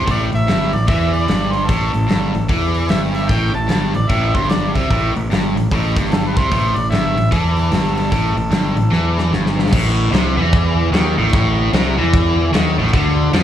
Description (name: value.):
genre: blues rock power trio and southern rock.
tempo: 149 BPM.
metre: 4/4.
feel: swing 63% on 8ths.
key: A minor.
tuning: A4 = 444 Hz.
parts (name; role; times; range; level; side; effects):
warm harmonica; melody; 0.0-9.3 s; A4 to A5; -22 LUFS; right 1 dB; overdrive, slapback echo.
cranked stack guitar; riff; 0.0-13.4 s; G2 to F3; -19 LUFS; equal; overdrive, slapback echo.
fuzz fingered electric bass; bass; 0.0-13.4 s; G1 to F2; -19 LUFS; equal; overdrive.
big rock drum kit; drums; 0.1-13.4 s; crash cymbal, hi-hat, kick drum, snare drum; -20 LUFS; equal; none.
room: light reverb.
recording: live gig heard through the venue's PA, club reverb.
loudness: -14 LUFS.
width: side -10 dB against mid.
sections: 0.0-9.7 A section; 9.7-13.4 B section.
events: drum fill 8.9-9.7.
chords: 0.0 A5; 9.7 Am.